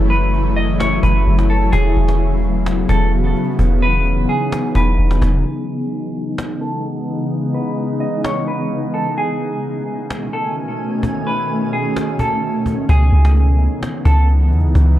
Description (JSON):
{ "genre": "hip hop, atmospheric cloud-rap", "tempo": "129 BPM", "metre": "4/4", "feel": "half-time", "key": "C# minor", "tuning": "A4 = 441 Hz", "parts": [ { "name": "shimmering ambient pad", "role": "sustained chords", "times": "0.0-15.0 s", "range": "B2 to G#5", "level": "-20 LUFS", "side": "left 1 dB", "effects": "chorus, built-in reverb, low-pass filter" }, { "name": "soft 808-style bass", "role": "bass", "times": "0.0-5.4, 12.9-15.0 s", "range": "E1 to E2", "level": "-14 LUFS", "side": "equal", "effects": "none" }, { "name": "cajon", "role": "drums", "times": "0.0-14.9 s", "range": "none", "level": "-26 LUFS", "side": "equal", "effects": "none" }, { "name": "semi-hollow electric guitar", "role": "melody", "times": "0.1-14.3 s", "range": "G#4 to D#5", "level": "-23 LUFS", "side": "right 1 dB", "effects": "lush chorus, low-pass filter, digital delay" } ], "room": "little or no reverb", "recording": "dark, warm production", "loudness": "-15 LUFS", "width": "side -13 dB against mid", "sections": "0.0-5.5 A section; 5.5-12.9 B section; 12.9-15.0 C section", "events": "filter sweep 5.5-12.9", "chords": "0.0 F#m7; 1.7 E69; 5.5 C#m9; 9.2 Amaj9#11; 12.9 C#m9" }